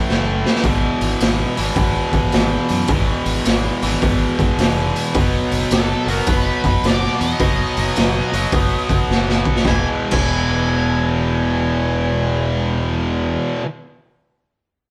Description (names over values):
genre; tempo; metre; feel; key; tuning
blues rock power trio and southern rock; 107 BPM; 4/4; swing 65% on 8ths; E major; A4 = 439 Hz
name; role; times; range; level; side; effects
octave-fuzz lead guitar; melody; 0.0, 5.7-12.7 s; A4 to G#5; -27 LUFS; equal; wah, distortion
tight distorted guitar; riff; 0.0-13.7 s; E2 to B3; -22 LUFS; equal; distortion
growling fingered electric bass; bass; 0.1-13.4 s; E1 to F#2; -25 LUFS; equal; overdrive
raw garage drum kit; drums; 0.1-10.2 s; crash cymbal, hi-hat, kick drum, snare drum; -22 LUFS; equal; none
room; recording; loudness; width
light reverb; band playing live in one room; -18 LUFS; mono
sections
0.0-9.7 A section; 9.7-11.9 B section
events
drum fill 0.1-0.7, 9.1-9.7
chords
0.0 A5; 0.7 E/G#; 5.2 B/F#; 9.7 E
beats
0.09 | 0.65 1.22 1.78 2.34 | 2.90 3.47 4.03 4.59 | 5.16 5.72 6.28 6.85 | 7.41 7.97 8.54 9.10 | 9.66 10.22 10.79 11.35